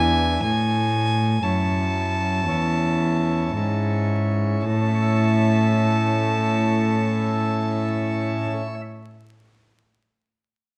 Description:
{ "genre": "classical, baroque-style sonata movement with continuo", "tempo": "53-62 BPM", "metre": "4/4", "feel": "rubato", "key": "A major", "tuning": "A4 = 440 Hz", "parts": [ { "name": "rich violin", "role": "melody", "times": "0.0-8.5 s", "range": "G#5 to A5", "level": "-28 LUFS", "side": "equal", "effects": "none" }, { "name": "chamber organ, principal chorus", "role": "accompaniment", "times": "0.0-8.8 s", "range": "E2 to E5", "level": "-28 LUFS", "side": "equal", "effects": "none" }, { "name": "rich cello", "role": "bass", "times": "0.0-8.5 s", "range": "E2 to A2", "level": "-24 LUFS", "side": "equal", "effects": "none" } ], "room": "wet recital hall reverb, RT60 1.3 s", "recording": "vinyl crackle", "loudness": "-22 LUFS", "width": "mono", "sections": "0.0-4.7 A section; 4.7-9.1 B section", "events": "slowing down 0.0-4.7", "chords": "0.4 A" }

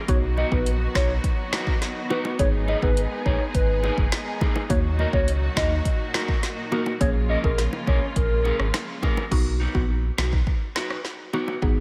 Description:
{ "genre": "dancehall", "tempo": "104 BPM", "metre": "4/4", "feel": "straight", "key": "unclear", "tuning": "A4 = 440 Hz", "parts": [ { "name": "rich studio string section", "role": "sustained chords", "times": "0.0-9.3 s", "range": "A#2 to G#4", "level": "-35 LUFS", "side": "equal", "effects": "sidechain pumping" }, { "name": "hollow clarinet-like synth lead", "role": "melody", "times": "0.1-8.6 s", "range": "A#4 to D#5", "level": "-31 LUFS", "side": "equal", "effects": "chorus, analog delay" }, { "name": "mallet-like synth pluck", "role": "accompaniment", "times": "0.1-11.8 s", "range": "A#3 to G#4", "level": "-32 LUFS", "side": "equal", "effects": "chorus, phaser, sidechain pumping" }, { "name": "sub bass with octave", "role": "bass", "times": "0.1-11.8 s", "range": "F#1 to D#2", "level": "-27 LUFS", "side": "equal", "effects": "none" }, { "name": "afro-pop drum kit", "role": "drums", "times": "0.1-11.8 s", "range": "crash cymbal, finger snaps, hi-hat, kick drum, rim click, snare drum", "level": "-27 LUFS", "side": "equal", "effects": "none" }, { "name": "electric guitar at the edge of break-up", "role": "arpeggios", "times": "0.4-11.5 s", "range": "C#4 to B4", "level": "-34 LUFS", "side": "equal", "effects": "subtle chorus, analog delay" }, { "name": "bongos", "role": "percussion", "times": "0.4-11.6 s", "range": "none", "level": "-37 LUFS", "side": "equal", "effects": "none" } ], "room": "light reverb", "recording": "none", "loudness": "-24 LUFS", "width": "mono", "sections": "0.0-9.3 A section; 9.3-11.8 B section", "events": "none", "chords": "0.1 B; 2.4 G#m; 4.7 D#m; 7.0 A#m7; 9.3 B" }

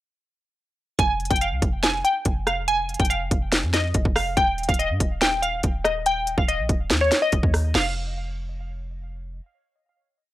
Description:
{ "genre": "hip hop, trap", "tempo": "142 BPM", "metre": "4/4", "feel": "half-time", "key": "F minor", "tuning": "A4 = 441 Hz", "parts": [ { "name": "glassy wavetable pluck", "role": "melody", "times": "1.0-9.0 s", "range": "Db5 to Ab5", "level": "-23 LUFS", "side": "equal", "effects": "chorus" }, { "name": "clean 808-style bass", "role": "bass", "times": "1.0-9.4 s", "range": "Eb1 to G2", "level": "-28 LUFS", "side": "equal", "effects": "none" }, { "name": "trap drum kit", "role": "drums", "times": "1.0-7.8 s", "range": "crash cymbal, hi-hat, kick drum, rim click, snare drum", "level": "-23 LUFS", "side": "equal", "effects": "none" } ], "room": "little or no reverb", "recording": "dry, gritty hardware recording", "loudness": "-20 LUFS", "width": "side -15 dB against mid", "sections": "1.0-7.7 hook; 7.7-10.3 final note", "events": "none", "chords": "1.0 F5; 4.4 Eb; 7.7 N.C." }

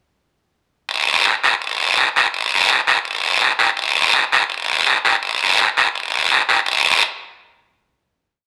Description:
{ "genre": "latin", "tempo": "166 BPM", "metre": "4/4", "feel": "straight", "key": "none", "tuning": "none", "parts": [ { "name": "guiro", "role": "percussion", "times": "0.9-6.7 s", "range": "none", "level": "-16 LUFS", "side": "equal", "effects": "none" } ], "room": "moderate large studio reverb, RT60 1.1 s", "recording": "dark, warm production", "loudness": "-16 LUFS", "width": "mono", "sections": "0.9-6.7 groove; 6.7-8.5 final hit", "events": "none", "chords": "none" }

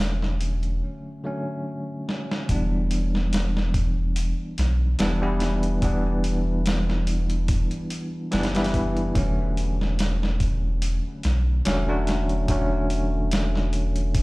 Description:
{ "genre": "trip hop", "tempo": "72 BPM", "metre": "4/4", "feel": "swing 54% on 16ths", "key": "E dorian", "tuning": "A4 = 441 Hz", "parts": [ { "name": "bell-like tine electric piano", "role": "accompaniment", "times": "0.0-14.2 s", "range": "D3 to E4", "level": "-27 LUFS", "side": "equal", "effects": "tremolo, tape echo" }, { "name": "soft dub sub bass", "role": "bass", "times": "0.0-14.2 s", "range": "E1 to B1", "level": "-24 LUFS", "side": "equal", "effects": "none" }, { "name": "dusty soul sampler-style drum kit", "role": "drums", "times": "0.0-14.2 s", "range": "hi-hat, kick drum, snare drum", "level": "-27 LUFS", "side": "equal", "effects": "overdrive" } ], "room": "little or no reverb", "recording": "played on a big sound system in a bare room, large studio reverb", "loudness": "-22 LUFS", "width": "side -23 dB against mid", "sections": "0.0-2.5 A section; 2.5-14.2 B section", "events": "break 0.8-2.5; drum fill 2.1-2.5", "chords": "0.0 Dmaj7/E; 2.5 Em7; 9.2 Dmaj7/E" }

